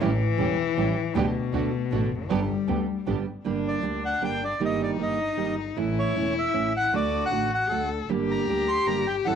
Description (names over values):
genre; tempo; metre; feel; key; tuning
tango; 156 BPM; 3/4; rubato; G major, G harmonic minor from 3.5 s; A4 = 441 Hz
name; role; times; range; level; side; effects
clear cello; second line; 0.0-9.4 s; B2 to A4; -29 LUFS; left 10 dB; cassette tape
nylon-string guitar; accompaniment; 0.0-9.4 s; D3 to G4; -28 LUFS; right 8 dB; cassette tape
rich studio string section; stabs; 0.0-3.2 s; A3 to G4; -35 LUFS; right 7 dB; cassette tape
rich double bass; bass; 0.0-9.4 s; E1 to D2; -31 LUFS; right 1 dB; none
bandoneon; melody; 3.7-9.3 s; C#5 to C6; -27 LUFS; equal; none
room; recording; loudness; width
light reverb, studio reverb; home recording on cassette; -23 LUFS; side -8 dB against mid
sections
0.0-3.5 A section; 3.5-9.4 B section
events
cello solo 0.0-3.5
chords
0.0 A7; 1.2 G/D; 1.5 D; 2.3 G; 3.5 Gm; 4.6 Eb/G; 5.8 A; 6.9 D; 8.1 Gm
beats
| 0.01 0.39 0.77 | 1.15 1.53 1.92 | 2.30 2.68 3.07 | 3.46 3.85 4.24 | 4.62 5.00 5.39 | 5.77 6.16 6.54 | 6.93 7.32 7.71 | 8.10 8.49 8.88 | 9.26